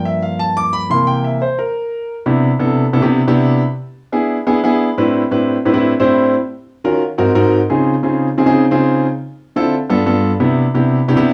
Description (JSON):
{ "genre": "jazz", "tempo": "177 BPM", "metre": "4/4", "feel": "straight", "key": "C major", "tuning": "A4 = 440 Hz", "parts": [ { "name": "warm concert grand piano", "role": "solo", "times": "0.0-11.3 s", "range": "G2 to D6", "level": "-15 LUFS", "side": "equal", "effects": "none" } ], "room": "moderate club reverb, RT60 0.7 s", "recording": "none", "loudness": "-15 LUFS", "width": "mono", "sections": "0.0-2.3 A section; 2.3-11.3 B section", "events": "grand piano solo 0.0-2.3", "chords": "0.0 Gm7; 0.9 C7; 2.3 Cmaj7; 3.6 E7; 5.0 Am11; 6.3 Ebm7; 7.0 Ab7; 7.7 Dbmaj7; 9.0 Dm7; 9.7 G7; 10.4 Cmaj7", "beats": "0.22 0.56 | 0.90 1.24 1.58 1.92 | 2.25 2.59 2.93 3.27 | 3.61 3.95 4.29 4.63 | 4.97 5.31 5.65 5.99 | 6.33 6.67 7.01 7.35 | 7.69 8.03 8.37 8.71 | 9.05 9.39 9.73 10.07 | 10.41 10.74 11.09" }